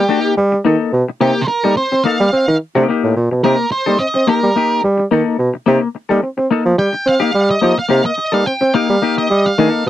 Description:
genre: funk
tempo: 108 BPM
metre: 4/4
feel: straight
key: C dorian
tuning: A4 = 445 Hz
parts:
  - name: octave-fuzz lead guitar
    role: melody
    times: 0.0-9.9 s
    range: G4 to G5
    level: -18 LUFS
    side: right 2 dB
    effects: distortion
  - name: mellow bassoon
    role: bass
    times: 0.0-9.9 s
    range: A2 to C4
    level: -14 LUFS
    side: right 1 dB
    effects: none
  - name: semi-hollow electric guitar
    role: accompaniment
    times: 0.1-9.9 s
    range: Bb3 to A4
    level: -16 LUFS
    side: left 6 dB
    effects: lush chorus
room: little or no reverb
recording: dry, close 1970s-style studio recording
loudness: -12 LUFS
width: side -12 dB against mid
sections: 0.0-9.9 A section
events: lead electric guitar solo 0.0-9.9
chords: 0.0 Cm7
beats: 0.09 0.65 | 1.21 1.77 2.33 2.88 | 3.44 4.00 4.56 5.12 | 5.67 6.23 6.79 7.35 | 7.91 8.47 9.02 9.58

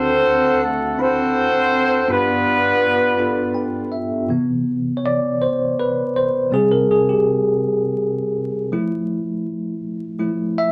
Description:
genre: gospel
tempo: 54 BPM (dotted quarters)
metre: 6/8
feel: straight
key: C major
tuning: A4 = 440 Hz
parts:
  - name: warm horn section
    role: melody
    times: 0.0-3.9 s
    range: A3 to C5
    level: -19 LUFS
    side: equal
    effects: none
  - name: bell-like tine electric piano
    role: accompaniment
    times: 0.0-10.7 s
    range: D2 to B5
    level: -22 LUFS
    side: equal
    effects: none
room: wet studio ambience, RT60 0.5 s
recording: vinyl crackle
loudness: -19 LUFS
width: mono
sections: 0.0-4.3 A section; 4.3-10.7 B section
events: tine electric piano fill 3.2-4.3; tine electric piano solo 4.3-10.7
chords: 0.0 D7; 2.1 G7; 4.3 Cmaj7; 6.5 C5; 8.7 Fmaj7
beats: 0.98 | 2.08 3.19 | 4.30 5.40 | 6.51 7.62 | 8.72 9.83

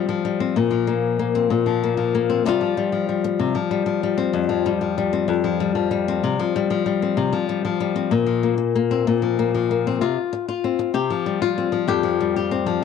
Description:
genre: highlife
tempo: 127 BPM (dotted quarters)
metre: 12/8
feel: straight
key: unclear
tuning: A4 = 441 Hz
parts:
  - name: flamenco guitar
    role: solo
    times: 0.0-12.8 s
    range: F2 to G4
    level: -19 LUFS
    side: left 7 dB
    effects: none
room: moderate spring reverb, RT60 1.2 s, small room ambience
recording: none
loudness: -19 LUFS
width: side -6 dB against mid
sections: 0.0-10.0 A section; 10.0-12.8 B section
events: none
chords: 0.0 Csus4; 0.6 Bbsus2; 2.5 Csus4; 4.3 Fsus2; 6.2 Csus4; 8.1 Bbsus2; 10.0 Csus4; 11.9 Fsus2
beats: 0.09 | 0.56 1.03 1.51 1.98 | 2.45 2.92 3.40 3.87 | 4.34 4.81 5.28 5.76 | 6.23 6.70 7.17 7.64 | 8.11 8.58 9.06 9.53 | 10.00 10.47 10.94 11.41 | 11.88 12.36 12.83

